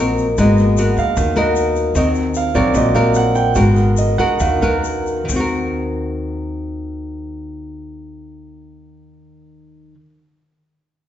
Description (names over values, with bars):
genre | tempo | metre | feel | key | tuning
bossa nova | 130-153 BPM | 4/4 | straight | Eb minor | A4 = 436 Hz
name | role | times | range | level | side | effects
nylon-string guitar | accompaniment | 0.0-10.1 s | Bb2 to Bb4 | -18 LUFS | left 2 dB | none
warm concert grand piano | accompaniment | 0.0-5.3 s | Gb3 to G5 | -19 LUFS | right 3 dB | none
upright bass | bass | 0.0-9.9 s | Ab1 to Eb2 | -21 LUFS | equal | none
egg shaker | percussion | 0.2-5.4 s | none | -33 LUFS | left 7 dB | none
room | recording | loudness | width
wet recital hall reverb, RT60 1.5 s | recorded in a church or concert hall, nothing above 8.0 kHz | -14 LUFS | side -11 dB against mid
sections
0.0-5.3 A section; 5.3-9.0 B section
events
grand piano solo 0.0-5.3; slowing down 2.0-5.3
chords
0.4 Abm9; 2.0 Ebm6; 3.6 Abm9; 5.3 Ebm6